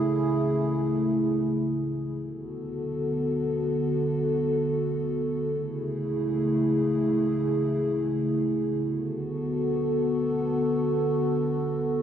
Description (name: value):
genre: hip hop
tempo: free time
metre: none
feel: none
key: unclear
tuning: A4 = 440 Hz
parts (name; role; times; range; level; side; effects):
- dark analog pad; solo; 0.0-12.0 s; C#3 to A4; -24 LUFS; equal; chorus, tape echo
room: moderate echo chamber reverb, RT60 1.8 s, digital ambience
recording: echo-heavy mix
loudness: -24 LUFS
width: side -9 dB against mid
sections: 0.0-2.2 A section; 2.2-8.8 B section; 8.8-12.0 C section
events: none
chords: 0.0 Amaj7; 2.2 Bm7; 5.5 Amaj7; 8.8 Bm7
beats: free time